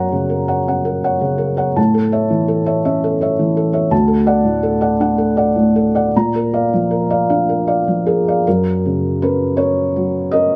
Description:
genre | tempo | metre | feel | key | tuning
neoclassical minimalist piano | 50-58 BPM (dotted quarters) | 6/8 | rubato | unclear | A4 = 440 Hz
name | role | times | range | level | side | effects
felt-muted upright piano | solo | 0.0-10.6 s | D2 to A#5 | -16 LUFS | equal | none
room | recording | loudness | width
light reverb | none | -16 LUFS | mono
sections
0.0-8.5 A section; 8.5-10.6 B section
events
none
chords
0.0 F#; 1.8 A; 3.9 D; 6.1 A#; 8.5 F#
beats
0.68 | 1.77 2.86 | 3.91 5.00 | 6.14 7.29 | 8.46 9.58

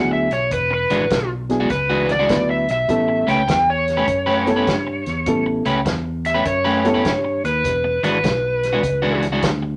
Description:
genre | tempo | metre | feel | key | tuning
electric blues shuffle | 101 BPM | 4/4 | swing 66% on 8ths | unclear | A4 = 439 Hz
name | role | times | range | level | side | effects
overdriven slide guitar | second line | 0.0-9.2 s | B4 to G5 | -22 LUFS | equal | none
barky reed electric piano | accompaniment | 0.0-7.0 s | F#3 to B4 | -23 LUFS | equal | overdrive
fingered electric bass | bass | 0.0-9.8 s | E1 to G2 | -28 LUFS | equal | none
electric guitar at the edge of break-up | riff | 0.1-9.7 s | E3 to B4 | -23 LUFS | equal | none
natural country drum kit | drums | 0.3-9.6 s | hi-hat, kick drum, snare drum | -28 LUFS | equal | none
room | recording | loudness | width
moderate studio ambience, RT60 0.5 s | none | -19 LUFS | mono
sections
0.0-9.8 A section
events
electric slide guitar solo 0.0-9.8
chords
0.0 E9; 2.9 A9; 7.6 E9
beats
| 0.52 1.11 1.70 2.30 | 2.89 3.49 4.08 4.67 | 5.27 5.86 6.46 7.05 | 7.65 8.24 8.84 9.43

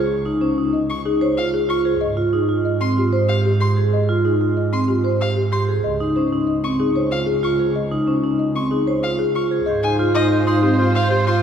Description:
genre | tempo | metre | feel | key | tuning
classical, minimalist pattern music | 188 BPM | 6/4 | straight | Ab major | A4 = 440 Hz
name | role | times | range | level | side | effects
folk marimba with soft mallets | melody | 0.0-11.3 s | G4 to Eb5 | -25 LUFS | left 6 dB | none
vibraphone with medium mallets | arpeggios | 0.0-11.4 s | C4 to C5 | -19 LUFS | right 1 dB | none
rich double bass | bass | 0.0-11.4 s | Db2 to Ab2 | -22 LUFS | right 2 dB | none
rich violin | arpeggios | 0.9-11.4 s | Eb5 to Db6 | -29 LUFS | left 4 dB | none
clear oboe | second line | 9.7-11.4 s | C5 | -25 LUFS | right 1 dB | none
rich studio string section | sustained chords | 9.7-11.4 s | F4 to C5 | -26 LUFS | left 1 dB | none
room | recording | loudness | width
wet church reverb, RT60 3.3 s | recorded in a church or concert hall | -16 LUFS | side -8 dB against mid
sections
0.0-9.7 A section; 9.7-11.4 B section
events
none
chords
0.0 Dbmaj7; 2.0 Ab6; 5.8 Dbmaj7; 9.7 Ab6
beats
| 0.10 0.42 0.74 1.06 1.38 1.69 | 2.01 2.33 2.65 2.97 3.29 3.61 | 3.93 4.25 4.57 4.88 5.20 5.52 | 5.84 6.16 6.48 6.80 7.12 7.44 | 7.76 8.08 8.40 8.71 9.03 9.35 | 9.67 9.99 10.31 10.63 10.95 11.27

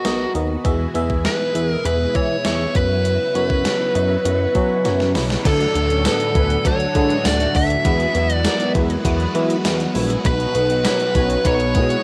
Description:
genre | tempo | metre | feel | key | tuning
1980s-style pop | 100 BPM | 4/4 | straight | unclear | A4 = 440 Hz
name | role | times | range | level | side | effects
fuzz lead guitar | melody | 0.0-12.0 s | F#4 to E5 | -24 LUFS | equal | distortion, tape echo
FM electric piano | accompaniment | 0.0-12.0 s | B2 to B5 | -28 LUFS | equal | chorus, cassette tape
string machine, full ensemble | sustained chords | 0.0-12.0 s | A2 to G#4 | -30 LUFS | equal | phaser, ensemble chorus, cassette tape
gated 80s digital drum machine | drums | 0.0-12.0 s | crash cymbal, hi-hat, kick drum, snare drum, tambourine | -24 LUFS | equal | gated reverb, gated reverb snare, overdrive, cassette tape
chorused synth bass | bass | 0.1-12.0 s | A#1 to F#3 | -24 LUFS | equal | none
raw garage guitar | accompaniment | 5.4-12.0 s | B2 to E4 | -33 LUFS | equal | overdrive, ensemble chorus, cassette tape
analog synth brass | stabs | 5.6-12.0 s | D3 to A#5 | -29 LUFS | equal | chorus, phaser, cassette tape
room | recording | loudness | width
moderate studio ambience, RT60 0.5 s | home recording on cassette | -19 LUFS | mono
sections
0.0-5.5 A section; 5.5-12.0 B section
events
FM electric piano fill 0.0-0.7, 3.6-5.5; drum fill 4.8-5.5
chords
0.0 Bmaj7; 0.7 E; 2.8 F#7sus4; 5.5 D; 7.8 Eadd9; 10.2 B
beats
0.05 | 0.65 1.25 1.85 2.45 | 3.05 3.65 4.25 4.85 | 5.45 6.05 6.65 7.25 | 7.85 8.45 9.05 9.65 | 10.25 10.85 11.45

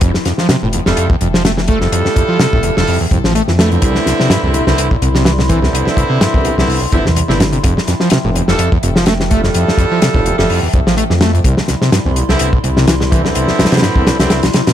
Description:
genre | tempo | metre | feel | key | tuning
breakbeat, breaks | 126 BPM | 4/4 | swing 55% on 16ths | F lydian | A4 = 440 Hz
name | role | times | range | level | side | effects
warbly tape-like pad | sustained chords | 0.0-14.7 s | F3 to C6 | -24 LUFS | left 1 dB | chorus, built-in reverb, sidechain pumping
overdriven acid bass | riff | 0.0-14.7 s | B1 to A3 | -16 LUFS | equal | wide subtle chorus, ping-pong delay
dark detuned saw bass | bass | 0.0-14.3 s | F1 to F2 | -17 LUFS | equal | tube saturation
warm soul drum kit | drums | 0.0-14.7 s | hi-hat, kick drum, snare drum | -14 LUFS | equal | none
bright horn section | stabs | 0.9-14.4 s | D3 to A4 | -18 LUFS | right 2 dB | vintage 12-bit sampler grit, ping-pong delay
room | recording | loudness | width
light reverb, small room ambience | none | -11 LUFS | side -10 dB against mid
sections
0.0-14.7 A section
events
none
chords
0.0 Fmaj9; 3.8 Cmaj9; 7.6 Fmaj9; 11.4 Cmaj9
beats
| 0.02 0.49 0.97 1.45 | 1.92 2.40 2.88 3.35 | 3.83 4.30 4.78 5.26 | 5.73 6.21 6.68 7.16 | 7.64 8.11 8.59 9.06 | 9.54 10.02 10.49 10.97 | 11.45 11.92 12.40 12.88 | 13.35 13.83 14.30

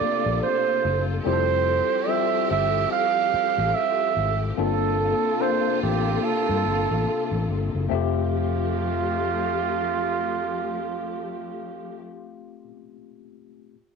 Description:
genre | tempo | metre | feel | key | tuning
R&B | 72 BPM | 4/4 | swing 60% on 16ths | F major | A4 = 440 Hz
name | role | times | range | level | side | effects
breathy flugelhorn | melody | 0.0-12.0 s | F4 to F5 | -24 LUFS | right 8 dB | slapback echo
tine electric piano | accompaniment | 0.0-13.8 s | G3 to E5 | -29 LUFS | left 13 dB | overdrive, medium stereo tremolo
warm studio string section | sustained chords | 0.0-12.0 s | C3 to A4 | -32 LUFS | left 1 dB | none
vintage muted fingered electric bass | bass | 0.0-12.7 s | F1 to G2 | -27 LUFS | left 2 dB | tube saturation
room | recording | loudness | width
moderate spring reverb, RT60 2.4 s | 1960s-style stereo with parts hard left and right | -21 LUFS | side -5 dB against mid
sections
0.0-7.9 A section; 7.9-11.2 B section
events
none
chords
0.0 Gm11; 1.2 Fmaj9; 4.6 Gm11; 7.9 Fmaj9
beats
0.40 | 1.24 2.07 2.90 3.73 | 4.57 5.40 6.24 7.07 | 7.90 8.73 9.57 10.40

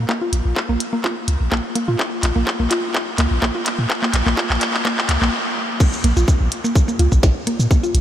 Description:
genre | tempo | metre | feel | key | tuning
minimal techno | 126 BPM | 4/4 | straight | Bb minor | A4 = 439 Hz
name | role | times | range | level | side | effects
punchy sub bass | bass | 0.0-8.0 s | Bb1 to Bb2 | -18 LUFS | equal | sidechain pumping
mallet-like synth pluck | riff | 0.1-7.9 s | Bb3 to F4 | -23 LUFS | equal | chorus, sidechain pumping, analog delay
electronic kick drum | drums | 0.1-7.8 s | none | -19 LUFS | equal | high-pass filter on kick, small room reverb, high-pass filter on room
minimal click drum kit | drums | 0.1-8.0 s | crash cymbal, handclaps, hi-hat, shaker, snare drum | -22 LUFS | equal | high-pass filter on perc, small room reverb, high-pass filter on snare, high-pass filter on hats, high-pass filter on cymbals
room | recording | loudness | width
moderate huge ambient reverb, RT60 7.6 s | dreamy mix soaked in reverb | -16 LUFS | side -11 dB against mid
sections
0.0-5.8 A section; 5.8-8.0 B section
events
build-up 0.0-5.8; drum fill 0.0-5.3; filter sweep on synth arpeggio sound 0.0-5.8; stop 5.3-5.8; drop 5.8-8.0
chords
none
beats
| 0.09 0.56 1.04 1.52 | 1.99 2.47 2.94 3.42 | 3.90 4.37 4.85 5.33 | 5.80 6.28 6.75 7.23 | 7.71

